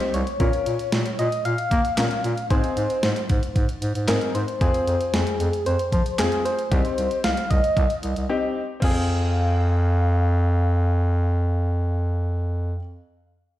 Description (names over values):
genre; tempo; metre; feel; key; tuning
synth-pop; 114 BPM; 4/4; straight; F minor; A4 = 441 Hz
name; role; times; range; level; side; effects
soft struck synth lead; melody; 0.0-12.8 s; Ab4 to F5; -26 LUFS; left 1 dB; chorus, tape echo
warm grand piano; accompaniment; 0.0-12.8 s; C4 to Bb4; -29 LUFS; left 4 dB; none
clean 12-bit digital drum machine; drums; 0.0-8.9 s; crash cymbal, handclaps, hi-hat, kick drum, snare drum; -25 LUFS; equal; none
warm bass clarinet; bass; 0.1-12.8 s; C2 to Bb3; -22 LUFS; equal; none
room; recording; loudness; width
light reverb; played on a big sound system in a bare room, stone room reverb; -20 LUFS; side -14 dB against mid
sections
0.0-8.8 A section; 8.8-13.0 B section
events
break 8.3-8.8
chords
0.4 Bbm; 2.5 Ab; 4.6 Fm; 6.7 Cm; 8.8 Fm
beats
| 0.40 0.93 1.45 1.98 | 2.50 3.03 3.56 4.08 | 4.61 5.14 5.66 6.19 | 6.71 7.24 7.77 8.29 | 8.82 9.35 9.87 10.40 | 10.93 11.45 11.98 12.51